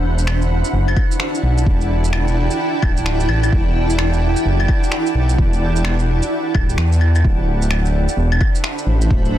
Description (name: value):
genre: future garage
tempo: 129 BPM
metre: 4/4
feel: swing 63% on 16ths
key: E minor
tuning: A4 = 438 Hz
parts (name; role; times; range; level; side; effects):
- granular cloud pad; sustained chords; 0.0-9.4 s; D4 to B5; -21 LUFS; right 1 dB; built-in reverb, sidechain pumping
- dark detuned saw bass; bass; 0.0-9.4 s; D1 to E2; -16 LUFS; equal; none
- electronic shaker, finger snaps and claves; drums; 0.2-9.3 s; none; -25 LUFS; equal; overdrive, vintage 12-bit sampler grit, soft clipping on snare
- electronic kick drum; drums; 1.0-9.2 s; none; -17 LUFS; equal; overdrive, vintage 12-bit sampler grit
room: light reverb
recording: dense, heavily limited modern master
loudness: -15 LUFS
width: side -12 dB against mid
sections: 0.0-9.4 A section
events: none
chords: 0.0 Em11; 7.2 D13